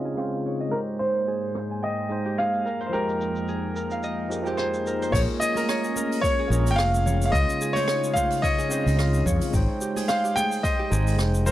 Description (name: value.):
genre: sunset chillout.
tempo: 109 BPM.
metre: 4/4.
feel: swing 55% on 16ths.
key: Bb dorian.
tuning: A4 = 440 Hz.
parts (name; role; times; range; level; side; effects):
overdriven tine electric piano; accompaniment; 0.0-11.5 s; Db3 to G5; -30 LUFS; moving between left 2 dB and right 4 dB; auto-pan.
airy breathy pad; sustained chords; 0.0-11.5 s; F2 to G5; -33 LUFS; equal; chorus.
Celtic harp; arpeggios; 0.0-11.5 s; G4 to Ab5; -33 LUFS; right 1 dB; low-pass filter, analog delay.
jazz brush drum kit; drums; 0.1-11.5 s; crash cymbal, hi-hat, rim click, shaker; -35 LUFS; equal; low-pass filter on hats, low-pass filter on cymbals, low-pass filter on snare, low-pass filter on perc, low-pass filter on room.
clear concert grand piano; melody; 0.7-11.5 s; Bb4 to G5; -26 LUFS; equal; analog delay.
fretless electric bass; bass; 5.1-11.5 s; F1 to F2; -22 LUFS; equal; none.
electronic kick drum; drums; 5.1-10.8 s; none; -27 LUFS; equal; overdrive.
congas; percussion; 5.6-11.5 s; none; -36 LUFS; left 2 dB; none.
room: small room ambience.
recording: dry, gritty hardware recording, low-pass filter.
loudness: -22 LUFS.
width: side -14 dB against mid.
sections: 0.0-5.1 A section; 5.1-11.5 B section.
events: filter sweep on analog synth pad 0.0-5.1; filter sweep on harp 0.0-5.1; filter sweep 0.0-5.1.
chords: 0.0 Dbmaj9; 0.7 Abmaj7; 2.7 Fm11; 5.1 Bbm7; 7.3 Dbmaj9; 9.5 Abmaj7.